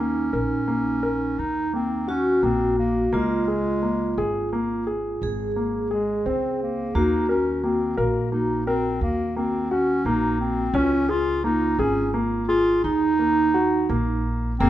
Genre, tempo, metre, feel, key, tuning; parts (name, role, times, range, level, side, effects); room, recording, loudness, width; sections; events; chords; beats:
contemporary instrumental, chamber music in an uneven meter; 172 BPM (eighths); 11/8; straight; Eb dorian; A4 = 439 Hz
warm clarinet; melody; 0.0-14.7 s; Ab3 to F4; -24 LUFS; equal
vibraphone with medium hard mallets; second line; 0.0-14.7 s; Eb4 to Ab4; -27 LUFS; right 1 dB
warm concert grand piano; arpeggios; 0.0-14.7 s; Bb3 to Bb4; -26 LUFS; left 1 dB
upright bass; bass; 0.0-14.7 s; Gb1 to Eb2; -30 LUFS; right 1 dB
light reverb; minimal, uncompressed stereo recording; -20 LUFS; side -13 dB against mid
0.0-14.6 A section
0.0 Ebm; 3.1 Db; 5.2 Abadd9; 6.9 Ebm; 10.7 Db; 12.8 Ebm
0.34 0.69 1.04 1.39 1.74 2.08 2.43 2.78 | 3.13 3.48 3.83 4.18 4.53 4.88 5.22 5.57 5.92 6.26 6.61 | 6.95 7.29 7.64 7.98 8.32 8.67 9.02 9.36 9.71 10.05 10.39 | 10.74 11.09 11.44 11.79 12.14 12.49 12.84 13.19 13.54 13.89 14.25 | 14.60